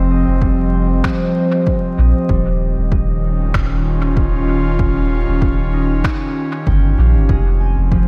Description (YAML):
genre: ambient dub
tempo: 96 BPM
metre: 4/4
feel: swing 54% on 16ths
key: unclear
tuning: A4 = 440 Hz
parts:
  - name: airy breathy pad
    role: sustained chords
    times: 0.0-8.1 s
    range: Eb3 to Eb5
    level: -22 LUFS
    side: equal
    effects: chorus
  - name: concert harp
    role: arpeggios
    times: 0.0-8.1 s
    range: F3 to Ab5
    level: -27 LUFS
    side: equal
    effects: low-pass filter, tape echo
  - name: soft dub sub bass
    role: bass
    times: 0.0-8.1 s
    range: Eb1 to Bb1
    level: -18 LUFS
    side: equal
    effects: none
  - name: electronic kick drum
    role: drums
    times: 0.4-8.1 s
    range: none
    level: -21 LUFS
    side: equal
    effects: overdrive
  - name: electronic finger snaps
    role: drums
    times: 1.0-6.2 s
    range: none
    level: -30 LUFS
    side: equal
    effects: dub echo
room: light reverb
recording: vinyl crackle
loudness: -16 LUFS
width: mono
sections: 0.0-8.1 A section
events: filter sweep on harp 0.0-8.1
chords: 0.0 Fm7; 2.3 Eb7; 7.3 Fm7